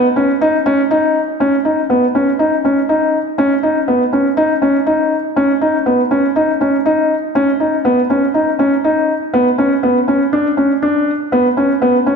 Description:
electronica; 121 BPM; 4/4; straight; B major; A4 = 440 Hz
felt-muted upright piano; solo; 0.0-12.2 s; B3 to D#4; -12 LUFS; equal; tape echo
wet recital hall reverb, RT60 1.5 s; -12 LUFS; side -5 dB against mid
0.0-1.4 A section; 1.4-12.2 B section

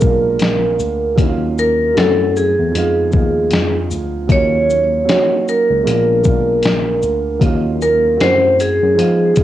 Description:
lo-fi hip hop; 77 BPM; 4/4; swing 59% on 16ths; Eb minor; A4 = 441 Hz
vibraphone with hard mallets; melody; 0.0-9.4 s; Ab4 to Db5; -15 LUFS; equal; low-pass filter, cassette tape
dark upright piano; accompaniment; 0.0-9.4 s; F3 to F#4; -21 LUFS; right 6 dB; cassette tape, low-pass filter
mellow tine electric piano; bass; 0.0-9.4 s; Bb1 to F3; -20 LUFS; left 2 dB; overdrive, medium stereo tremolo
dusty soul sampler-style drum kit; drums; 0.0-9.4 s; hi-hat, kick drum, shaker, snare drum; -17 LUFS; left 2 dB; cassette tape
moderate studio reverb, RT60 0.5 s; home recording on cassette; -12 LUFS; side -13 dB against mid
0.0-9.4 A section
0.0 Bb7b9; 1.2 Ebm9; 2.0 F#m7b5; 2.7 Fm7b5; 4.3 Ebm9; 5.9 Bb7b9; 7.4 Ebm9; 8.2 F#m7b5

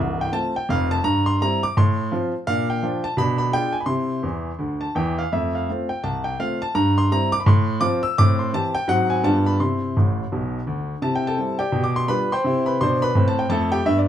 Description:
jazz, stride piano; 168 BPM; 4/4; swing 61% on 8ths; F major, C major from 8.2 s; A4 = 440 Hz
clear baby grand piano; solo; 0.0-14.1 s; C1 to E6; -19 LUFS; equal
wet club reverb, RT60 0.6 s; heard from further back in the room; -19 LUFS; side -10 dB against mid
0.0-11.0 A section; 11.0-14.1 B section
grand piano fill 4.2-5.3, 9.9-11.0
0.0 F; 1.0 C/G; 1.7 F/A; 2.5 Bb; 3.2 Bdim7; 3.9 C; 5.3 F; 6.7 C/G; 7.4 F/A; 8.2 Am7; 8.9 Ab7; 9.2 G7; 9.6 C; 11.7 G7/B; 12.4 C

